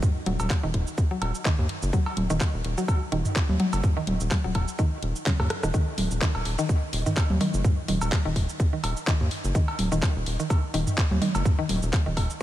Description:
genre	minimal techno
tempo	126 BPM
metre	4/4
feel	swing 55% on 16ths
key	Eb minor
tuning	A4 = 440 Hz
part	electronic kick drum	drums	0.0-12.3 s	none	-24 LUFS	equal	studio reverb
part	garage drum kit	drums	0.0-12.4 s	cabasa, handclaps, hi-hat, rim click	-32 LUFS	equal	studio reverb
part	electronic toms and cowbell	percussion	0.0-12.3 s	none	-30 LUFS	right 1 dB	studio reverb, ping-pong delay
part	mallet-like synth pluck	riff	0.3-12.4 s	Db3 to Gb3	-31 LUFS	equal	chorus, sidechain pumping, diffuse ambient delay
part	rubbery square bass	bass	0.3-12.3 s	Eb1 to Eb2	-27 LUFS	equal	sidechain pumping
room	light reverb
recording	none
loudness	-23 LUFS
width	side -13 dB against mid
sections	0.0-12.4 A section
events	drum fill 5.4-5.7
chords	none

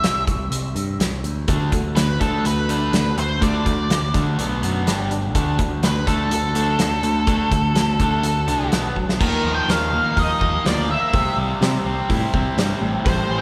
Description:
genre	indie rock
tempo	124 BPM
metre	4/4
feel	straight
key	unclear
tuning	A4 = 440 Hz
part	octave-fuzz lead guitar	melody	0.0-13.4 s	A4 to G5	-27 LUFS	equal	distortion
part	growling picked electric bass	bass	0.0-13.4 s	G1 to C3	-27 LUFS	equal	overdrive
part	loose indie drum kit	drums	0.0-13.2 s	crash cymbal, hi-hat, kick drum, snare drum	-26 LUFS	equal	none
part	mellow electric guitar	riff	1.5-13.4 s	A2 to F#4	-28 LUFS	equal	none
part	overdriven electric guitar	riff	1.5-13.4 s	A2 to G4	-28 LUFS	equal	none
part	mellow tonewheel organ	sustained chords	13.1-13.4 s	G4 to A5	-32 LUFS	equal	slow rotary speaker
room	wet cathedral reverb, RT60 4.7 s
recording	recorded in a church or concert hall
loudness	-20 LUFS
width	mono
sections	0.0-9.2 A section; 9.2-13.4 B section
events	drum fill 9.0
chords	0.0 C5; 1.2 N.C.; 1.5 D; 4.4 B5; 4.9 G5; 5.4 D; 8.7 B5; 9.2 Ebsus2; 11.1 C; 12.8 Am7

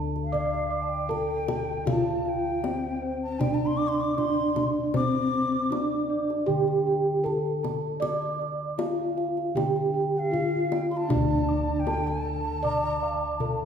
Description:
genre	Javanese gamelan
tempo	78 BPM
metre	4/4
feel	straight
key	D slendro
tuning	A4 = 445 Hz
part	gamelan-type bronze metallophone	melody	0.0-13.7 s	C4-25c to D5	-27 LUFS	right 1 dB	none
part	gamelan-type bronze metallophone	arpeggios	0.0-13.7 s	C5-25c to D6	-33 LUFS	right 3 dB	none
part	gamelan-type bossed gongs	bass	0.0-13.7 s	D2 to D5	-32 LUFS	left 1 dB	none
part	breathy bright bansuri	second line	0.2-13.7 s	F5-47c to D6	-33 LUFS	left 2 dB	none
part	kendang	percussion	0.2-13.6 s	none	-33 LUFS	left 3 dB	none
part	gamelan-type bossed gongs	arpeggios	11.1-13.7 s	F5-45c to D6	-35 LUFS	equal	none
room	wet scoring stage reverb, RT60 1.9 s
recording	recorded in a church or concert hall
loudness	-24 LUFS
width	side -7 dB against mid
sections	0.0-13.7 A section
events	none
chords	none

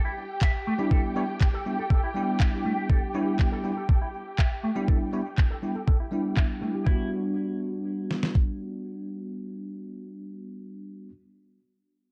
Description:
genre	nu-disco, nu disco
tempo	121 BPM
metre	4/4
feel	straight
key	E minor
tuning	A4 = 440 Hz
part	muted studio string section	sustained chords	0.0-6.9 s	G4 to G5	-37 LUFS	equal	sidechain pumping, low-pass filter
part	electric guitar with an envelope filter	riff	0.1-7.1 s	A3 to E5	-37 LUFS	equal	subtle chorus, low-pass filter
part	clean 12-bit digital drum machine	drums	0.4-8.5 s	kick drum, snare drum	-25 LUFS	equal	none
part	electronic handclaps	drums	0.4-6.5 s	none	-39 LUFS	equal	low-pass filter on hats, low-pass filter on snare, low-pass filter on room
part	bell-like tine electric piano	accompaniment	0.8-11.1 s	G3 to F#4	-33 LUFS	equal	analog chorus, sidechain pumping, digital delay
room	light reverb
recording	dark, warm production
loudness	-27 LUFS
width	mono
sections	0.0-6.9 A section; 6.9-10.8 B section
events	filter sweep on clean electric guitar 0.0-6.9; filter sweep on string section 0.0-6.9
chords	0.0 A7sus4; 6.9 Em7 (rootless)

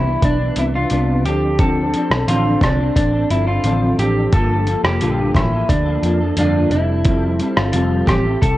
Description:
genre	indie pop, bedroom pop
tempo	88 BPM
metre	4/4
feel	straight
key	unclear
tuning	A4 = 442 Hz
part	electric guitar through a small old amp	melody	0.0-8.6 s	D4 to A4	-20 LUFS	right 1 dB	lush chorus
part	clean electric guitar	accompaniment	0.0-8.6 s	G2 to A4	-20 LUFS	left 1 dB	ensemble chorus, warbly pitch drift
part	vintage muted picked electric bass	bass	0.0-8.6 s	F1 to F2	-20 LUFS	equal	none
part	dusty soul sampler-style drum kit	drums	0.2-8.6 s	hi-hat, kick drum, rim click	-19 LUFS	equal	overdrive
room	light reverb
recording	worn, warbling old tape, cassette tape, warbly pitch drift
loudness	-14 LUFS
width	side -15 dB against mid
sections	0.0-8.6 A section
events	none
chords	0.0 Cmaj9; 1.3 Dm7; 4.3 Gm9; 6.7 Fmaj9

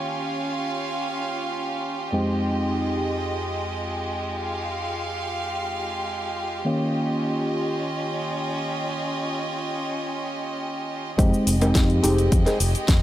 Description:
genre	nu-disco, nu disco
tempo	free time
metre	none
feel	none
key	F minor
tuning	A4 = 439 Hz
part	bright reed electric piano	accompaniment	0.0-12.6 s	F2 to Ab4	-27 LUFS	equal	phaser, low-pass filter, tape echo
part	clear studio violin section	sustained chords	0.0-13.0 s	Ab3 to F5	-28 LUFS	right 1 dB	sidechain pumping
part	fingered electric bass with an envelope filter	bass	11.2-13.0 s	F1 to F2	-22 LUFS	equal	tube saturation
part	electronic kick drum	drums	11.2-13.0 s	none	-19 LUFS	equal	overdrive, studio ambience
part	house drum kit	drums	11.2-13.0 s	cabasa, hi-hat, snare drum	-27 LUFS	left 1 dB	overdrive, studio ambience
part	cowbell	percussion	11.6-12.6 s	none	-32 LUFS	right 1 dB	none
room	light reverb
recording	none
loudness	-23 LUFS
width	side -13 dB against mid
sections	0.0-11.2 A section; 11.2-13.0 B section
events	filter sweep on reed electric piano 0.0-11.2; drop 11.2-13.0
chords	0.0 Eb9; 2.1 Fm9; 6.7 Eb9; 11.2 Fm9

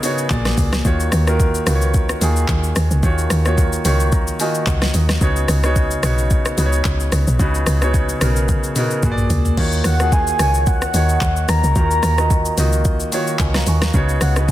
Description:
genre	amapiano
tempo	110 BPM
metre	4/4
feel	swing 55% on 16ths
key	Eb minor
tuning	A4 = 440 Hz
part	warm grand piano	accompaniment	0.0-14.5 s	Bb2 to Db6	-21 LUFS	equal	none
part	smooth R&B drum kit	drums	0.0-14.5 s	crash cymbal, handclaps, hi-hat, kick drum, rim click, shaker, snare drum, toms	-20 LUFS	equal	none
part	woody log drum bass	bass	0.3-14.5 s	Bb1 to Eb2	-18 LUFS	equal	none
part	soft octave-layered synth lead	melody	9.9-14.3 s	Gb5 to Bb5	-21 LUFS	equal	chorus, tape echo
room	little or no reverb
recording	dense, heavily limited modern master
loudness	-15 LUFS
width	side -14 dB against mid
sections	0.0-14.5 A section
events	grand piano fill 3.6-5.2; drum fill 8.5-9.6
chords	0.3 Bb7b13; 0.8 Ebm9; 5.2 Db9sus4; 9.0 Bb7b13; 9.6 Ebm9; 13.9 Db9sus4

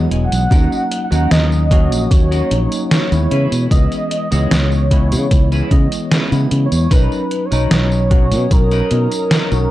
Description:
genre	vaporwave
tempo	75 BPM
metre	4/4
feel	straight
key	unclear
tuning	A4 = 438 Hz
part	warm velvety synth lead	melody	0.0-9.7 s	A#4 to F#5	-22 LUFS	equal	chorus, tape echo
part	bell-like tine electric piano	accompaniment	0.0-9.7 s	E3 to D#5	-21 LUFS	equal	medium stereo tremolo, wide subtle chorus
part	clean electric guitar	riff	0.0-9.5 s	C#4 to G#5	-28 LUFS	right 1 dB	wide subtle chorus, tape echo
part	fingered electric bass	bass	0.0-9.7 s	E1 to C#3	-15 LUFS	equal	none
part	detuned 8-bit digital drum machine	drums	0.1-9.7 s	hi-hat, snare drum, tambourine	-20 LUFS	equal	none
part	electronic kick drum	drums	0.5-8.7 s	none	-13 LUFS	equal	none
part	warbly tape-like pad	sustained chords	7.9-9.7 s	C#5 to D#6	-32 LUFS	right 3 dB	chorus, built-in reverb, phaser
room	little or no reverb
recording	dry, gritty hardware recording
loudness	-12 LUFS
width	side -15 dB against mid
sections	0.0-9.7 A section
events	clean electric guitar fill 0.0-0.5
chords	0.0 E; 0.5 D#m7; 3.3 C#m7; 6.9 Bmaj9

